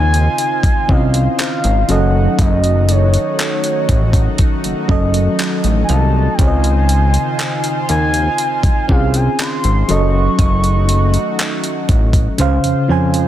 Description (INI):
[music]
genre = contemporary R&B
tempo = 60 BPM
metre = 4/4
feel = straight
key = Db major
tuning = A4 = 437 Hz
[part]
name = gliding portamento lead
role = melody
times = 0.0-11.9 s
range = Db5 to Db6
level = -20 LUFS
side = equal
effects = chorus, digital delay
[part]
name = FM electric piano with auto-pan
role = accompaniment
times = 0.0-13.3 s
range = Db3 to Ab5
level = -19 LUFS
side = right 2 dB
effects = none
[part]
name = lush unison pad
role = sustained chords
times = 0.0-13.3 s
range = Eb3 to C5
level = -24 LUFS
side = left 1 dB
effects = chorus
[part]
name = fat analog bass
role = bass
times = 0.0-13.3 s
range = Gb1 to F2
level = -14 LUFS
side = equal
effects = none
[part]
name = mallet-like synth pluck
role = texture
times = 0.0-12.3 s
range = C5 to F5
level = -37 LUFS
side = left 3 dB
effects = none
[part]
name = dusty soul sampler-style drum kit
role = drums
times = 0.1-13.3 s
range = handclaps, hi-hat, kick drum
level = -16 LUFS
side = equal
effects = overdrive
[sound]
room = little or no reverb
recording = dense, heavily limited modern master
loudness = -12 LUFS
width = side -12 dB against mid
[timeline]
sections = 0.0-13.3 A section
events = kick muted 12.4-13.3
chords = 0.0 Dbmaj9; 1.9 Gbm6; 6.4 Dbmaj9; 9.9 Gbm6; 12.4 Dbmaj7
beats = 0.39 1.39 | 2.39 3.39 4.39 5.39 | 6.39 7.39 8.39 9.39 | 10.39 11.39 12.39